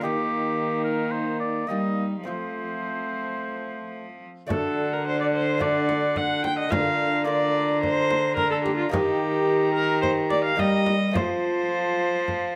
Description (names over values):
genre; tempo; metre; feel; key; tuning
classical, renaissance-style consort dance; 108 BPM; 4/4; straight; unclear; A4 = 441 Hz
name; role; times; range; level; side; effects
clear oboe; melody; 0.0-12.6 s; G4 to Bb5; -34 LUFS; equal; none
warm viola; second line; 0.0-12.6 s; C4 to G5; -28 LUFS; equal; none
clear trombone; accompaniment; 0.0-12.6 s; A3 to G4; -32 LUFS; equal; none
lute; accompaniment; 0.0-12.6 s; D3 to Bb4; -37 LUFS; equal; none
rich cello; bass; 0.0-12.6 s; D3 to G3; -31 LUFS; equal; none
frame drum; percussion; 4.5-12.5 s; none; -34 LUFS; equal; none
room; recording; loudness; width
moderate stone room reverb, RT60 1.0 s; none; -24 LUFS; mono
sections
0.0-4.5 A section; 4.5-12.6 A section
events
none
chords
0.0 Eb; 2.3 F; 4.5 D; 6.7 Bb/D; 8.9 Eb; 11.2 F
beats
| 0.03 0.59 1.14 1.70 | 2.26 2.82 3.38 3.94 | 4.50 5.06 5.61 6.17 | 6.72 7.27 7.83 8.38 | 8.93 9.48 10.04 10.59 | 11.15 11.71 12.28